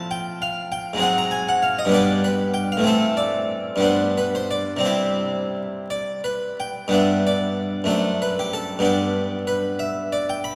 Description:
classical, baroque-style suite movement for harpsichord; 57-68 BPM (dotted quarters); 6/8; rubato; C major, G major from 6.9 s; A4 = 439 Hz
harpsichord; solo; 0.0-10.6 s; F#2 to B5; -22 LUFS; equal
wet church reverb, RT60 3.6 s; recorded in a church or concert hall, vinyl crackle; -22 LUFS; mono
0.0-6.9 A section; 6.9-10.6 A section
0.0 F/A; 1.0 Ab7; 1.9 G; 2.9 Am; 3.8 G; 4.9 C; 6.9 G; 7.9 D/F#; 8.9 G

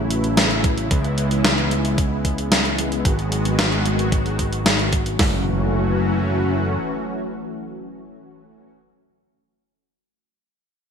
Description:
synthwave; 112 BPM; 4/4; straight; F# dorian; A4 = 440 Hz
soft supersaw; sustained chords; 0.0-8.7 s; C#3 to F#4; -24 LUFS; left 1 dB; ensemble chorus, sidechain pumping
modern bright picked electric bass; bass; 0.0-6.8 s; F#1 to C#2; -23 LUFS; equal; low-pass filter
gated 80s digital drum machine; drums; 0.1-5.2 s; hi-hat, snare drum; -20 LUFS; equal; gated reverb, gated reverb snare
gated 80s digital drum machine; drums; 0.6-5.3 s; hi-hat, kick drum, snare drum; -21 LUFS; equal; gated reverb, gated reverb snare
impact; sound effects; 5.2-8.8 s; -29 LUFS; equal
moderate plate reverb, RT60 2.0 s; bright 1980s-style digital production; -18 LUFS; side -7 dB against mid
0.0-5.2 A section; 5.2-9.5 B section
filter sweep on picked electric bass 0.0-5.2
0.0 A6; 0.9 C#m7; 3.1 G#m7; 5.2 F#m7

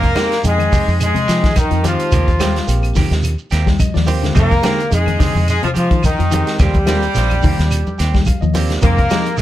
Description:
afrobeat; 107 BPM; 4/4; swing 54% on 16ths; F dorian; A4 = 440 Hz
warm horn section; melody; 0.0-9.4 s; Eb3 to Bb4; -20 LUFS; left 1 dB
bright trombone section; second line; 0.0-9.4 s; Eb3 to Bb3; -26 LUFS; left 3 dB
raspy tenor saxophone; second line; 0.0-9.4 s; Eb3 to Bb3; -26 LUFS; right 1 dB
electric guitar at the edge of break-up; arpeggios; 0.0-9.4 s; C3 to G3; -23 LUFS; left 7 dB; warbly pitch drift
semi-hollow electric guitar; stabs; 0.0-9.4 s; Eb3 to G4; -27 LUFS; right 8 dB
fingered electric bass; bass; 0.0-9.4 s; Bb1 to F3; -17 LUFS; equal
vintage drum kit; drums; 0.0-9.4 s; hi-hat, kick drum, snare drum; -18 LUFS; equal
congas; percussion; 0.0-9.3 s; -22 LUFS; right 1 dB
shekere; percussion; 0.0-9.4 s; -26 LUFS; right 3 dB
barky tine electric piano; accompaniment; 0.1-9.4 s; Ab3 to G5; -27 LUFS; right 4 dB; overdrive
claves; percussion; 0.2-9.3 s; -33 LUFS; left 5 dB
light reverb, small room ambience; -13 LUFS; side -13 dB against mid
0.0-9.4 A section
tine electric piano fill 3.2-4.4, 7.7-8.8
0.0 Fm9; 2.1 Eb69; 4.4 Fm9; 6.6 Eb69; 8.8 Fm9

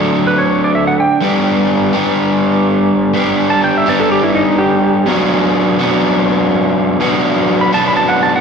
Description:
rock; 124 BPM; 4/4; straight; A4 = 440 Hz
crunchy overdriven guitar; riff; 0.0-8.4 s; B2 to A4; -12 LUFS; equal; slapback echo
clean lap steel guitar; melody; 0.3-8.4 s; D#4 to B5; -15 LUFS; right 2 dB; slapback echo
light reverb; live gig heard through the venue's PA, recital hall reverb; -11 LUFS; side -6 dB against mid
0.0-8.4 A section
electric slide guitar solo 0.0-8.4
0.0 D; 1.2 G; 5.1 Bm

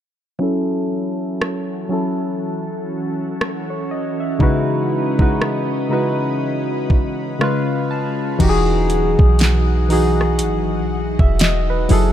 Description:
contemporary R&B; 60 BPM; 4/4; swing 58% on 16ths; F# dorian; A4 = 438 Hz
soft electric-piano-like synth keys; accompaniment; 0.4-12.1 s; C#3 to A5; -19 LUFS; left 1 dB; chorus, low-pass filter
glassy FM pad; sustained chords; 0.9-12.1 s; E3 to D#5; -26 LUFS; equal; ensemble chorus, built-in reverb, low-pass filter
smooth R&B drum kit; drums; 1.4-12.1 s; crash cymbal, hi-hat, kick drum, rim click, snare drum; -18 LUFS; equal
clean 808-style bass; bass; 8.4-12.1 s; E1 to B1; -18 LUFS; right 1 dB
little or no reverb; -16 LUFS; side -10 dB against mid
0.4-8.4 A section; 8.4-12.1 B section
filter sweep 0.4-8.4; synth keys fill 6.9-8.4
0.4 F#m7; 4.4 C#m11; 7.4 C#7; 8.4 Emaj9

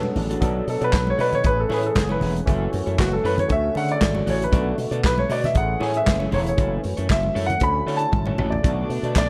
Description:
disco; 117 BPM; 4/4; straight; A4 = 441 Hz
barky tine electric piano; accompaniment; 0.0-9.3 s; C#3 to A4; -31 LUFS; equal; overdrive, analog chorus
electric guitar at the edge of break-up; accompaniment; 0.0-9.2 s; D4 to D5; -35 LUFS; equal
clear studio string section; sustained chords; 0.0-0.4, 8.6-9.3 s; A3 to D4; -37 LUFS; equal
slap bass with an envelope filter; bass; 0.0-9.3 s; E1 to D3; -27 LUFS; equal
congas; percussion; 0.0-9.3 s; -33 LUFS; equal
warm soul drum kit; drums; 0.2-9.3 s; handclaps, hi-hat, kick drum, snare drum, toms; -26 LUFS; equal
clear grand piano; melody; 0.7-9.3 s; F#4 to B5; -26 LUFS; equal
group handclap; percussion; 9.2-9.3 s; barely audible
light reverb, studio ambience; dark, warm production; -22 LUFS; mono
0.4-9.3 A section
grand piano solo 0.4-9.3; drum fill 8.1-8.6
0.4 Bm7; 1.4 Amaj7; 2.5 F#m7; 3.5 Dmaj7; 4.5 Bm7; 5.6 Amaj7; 6.6 F#m7; 7.6 Dmaj7; 8.6 Bm7

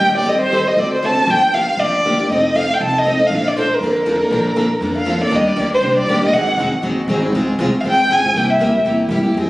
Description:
acoustic string swing (jazz manouche); 238 BPM; 4/4; swing 55% on 8ths; Bb major, Eb major from 5.3 s; A4 = 440 Hz
dark violin; melody; 0.0-8.7 s; Bb4 to A5; -16 LUFS; equal; plate reverb, tape echo
picked steel-string acoustic guitar; accompaniment; 0.0-9.5 s; C3 to A4; -18 LUFS; equal
upright bass; bass; 0.0-9.5 s; F1 to G2; -25 LUFS; equal
wet club reverb, RT60 0.5 s; recorded on a phone in the room, studio reverb, compression; -14 LUFS; side -18 dB against mid
0.0-5.3 A section; 5.3-9.5 B section
0.3 Am7b5; 0.8 D7; 1.3 Gm7; 2.3 F7; 3.3 Bbmaj7; 5.3 Ebmaj7; 6.3 Ab7; 7.3 Dbmaj7; 8.3 C7

